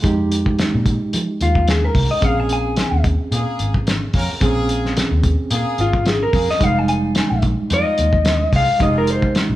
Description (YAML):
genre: straight-eighth soul blues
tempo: 110 BPM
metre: 4/4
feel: swing 55% on 16ths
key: F minor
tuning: A4 = 440 Hz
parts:
  - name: bright reed electric piano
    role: accompaniment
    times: 0.0-9.6 s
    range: G3 to Ab4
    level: -23 LUFS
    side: right 2 dB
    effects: fast tremolo
  - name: vintage muted fingered electric bass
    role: bass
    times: 0.0-9.6 s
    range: F1 to F3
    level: -20 LUFS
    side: equal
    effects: none
  - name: cloth-damped thuddy drum kit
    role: drums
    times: 0.0-9.5 s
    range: hi-hat, kick drum, snare drum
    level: -20 LUFS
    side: equal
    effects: none
  - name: electric guitar through a small old amp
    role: melody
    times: 1.4-9.4 s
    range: F4 to Ab5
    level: -20 LUFS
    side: left 1 dB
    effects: none
  - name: clear horn section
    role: sustained chords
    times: 2.2-9.3 s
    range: F3 to Bb4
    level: -28 LUFS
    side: left 2 dB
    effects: none
room: moderate large studio reverb, RT60 1.2 s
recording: band playing live in one room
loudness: -15 LUFS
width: side -15 dB against mid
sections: 0.0-9.6 A section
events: clean electric guitar solo 0.0-9.6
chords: 0.0 Fm7; 2.2 Bbm7; 6.6 Fm7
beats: | 0.04 0.59 1.14 1.68 | 2.23 2.78 3.33 3.87 | 4.42 4.97 5.51 6.06 | 6.61 7.16 7.71 8.25 | 8.80 9.35